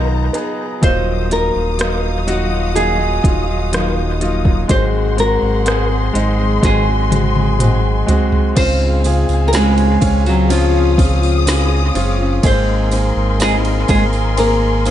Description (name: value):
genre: pop ballad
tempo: 62 BPM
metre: 4/4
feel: straight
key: Db major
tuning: A4 = 440 Hz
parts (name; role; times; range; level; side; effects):
- nylon-string guitar; melody; 0.0-14.9 s; F3 to C5; -19 LUFS; equal; dub echo
- clear concert grand piano; accompaniment; 0.0-14.9 s; Ab2 to Bb4; -21 LUFS; right 1 dB; none
- warm studio string section; sustained chords; 0.0-14.9 s; Gb3 to Eb6; -25 LUFS; left 3 dB; none
- fingerpicked plugged-in steel-string acoustic guitar; arpeggios; 0.0-14.9 s; Ab2 to Bb4; -25 LUFS; left 6 dB; none
- sub bass with octave; bass; 0.0-14.9 s; Eb1 to Db2; -17 LUFS; equal; none
- smooth R&B drum kit; drums; 0.3-14.9 s; crash cymbal, hi-hat, kick drum, ride cymbal, rim click, snare drum, toms; -19 LUFS; equal; none
- tambourine; percussion; 8.6-14.9 s; none; -30 LUFS; right 11 dB; none
room: light reverb, studio reverb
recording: echo-heavy mix, nothing above 11.0 kHz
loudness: -13 LUFS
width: side -11 dB against mid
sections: 0.0-8.6 A section; 8.6-14.9 B section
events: drum fill 6.6-8.6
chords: 0.0 Cb6; 0.8 Ebmadd9; 4.7 Ab7; 8.6 Dbmaj7; 12.4 Abadd9